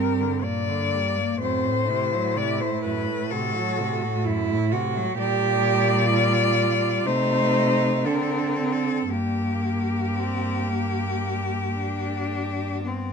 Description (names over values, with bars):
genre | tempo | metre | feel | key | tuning
classical, lyrical piece for cello ensemble | 54-65 BPM | 4/4 | rubato | G minor | A4 = 437 Hz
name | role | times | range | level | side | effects
rich cello | melody | 0.0-13.1 s | B3 to D5 | -26 LUFS | left 6 dB | none
warm cello | second line | 0.0-12.9 s | Bb3 to G4 | -27 LUFS | right 8 dB | none
clear cello | accompaniment | 0.0-13.1 s | F#2 to D4 | -29 LUFS | left 4 dB | none
warm cello | bass | 0.0-13.1 s | G2 to D3 | -28 LUFS | right 2 dB | none
room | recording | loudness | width
light reverb | close, detailed microphones | -21 LUFS | side -6 dB against mid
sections
0.0-13.1 A section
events
none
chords
0.0 Gm; 1.4 F#dim; 5.2 Gm/Bb; 7.1 Adim/C; 8.1 Bbmaj9/D; 9.1 Gm